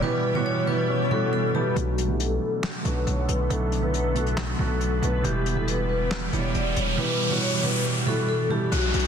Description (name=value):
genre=hip hop, trap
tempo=138 BPM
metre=4/4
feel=half-time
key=unclear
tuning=A4 = 440 Hz
part: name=vibraphone with medium hard mallets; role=melody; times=0.0-9.1 s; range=F#4 to D5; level=-29 LUFS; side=left 3 dB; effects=low-pass filter
part: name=felt-muted upright piano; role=accompaniment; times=0.0-8.7 s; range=B2 to A4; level=-27 LUFS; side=right 5 dB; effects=low-pass filter
part: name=granular cloud pad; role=sustained chords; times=0.0-8.7 s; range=D3 to A4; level=-30 LUFS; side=left 1 dB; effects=built-in reverb, low-pass filter
part: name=soft octave-layered synth lead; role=second line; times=0.9-1.8 s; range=B4 to C#5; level=-32 LUFS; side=left 11 dB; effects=chorus, digital delay
part: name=distorted 808-style bass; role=bass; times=1.8-9.1 s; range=E1 to B1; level=-27 LUFS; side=left 1 dB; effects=distortion
part: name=soft brush drum kit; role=drums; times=1.8-9.1 s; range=handclaps, hi-hat, snare drum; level=-32 LUFS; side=left 2 dB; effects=vintage 12-bit sampler grit
part: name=riser and downlifter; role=sound effects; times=5.9-9.1 s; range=none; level=-28 LUFS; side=equal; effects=none
room=light reverb, small room reverb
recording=dense, heavily limited modern master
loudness=-22 LUFS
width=side -7 dB against mid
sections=0.0-1.8 A section; 1.8-8.7 B section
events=break 0.0-1.8; filter sweep 1.8-8.7; riser 5.9-8.7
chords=0.0 Em; 1.8 Bm7; 5.2 Em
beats=| 0.03 0.46 0.90 1.33 | 1.76 2.20 2.63 3.07 | 3.50 3.94 4.37 4.81 | 5.24 5.68 6.11 6.55 | 6.98 7.42 7.85 8.29 | 8.72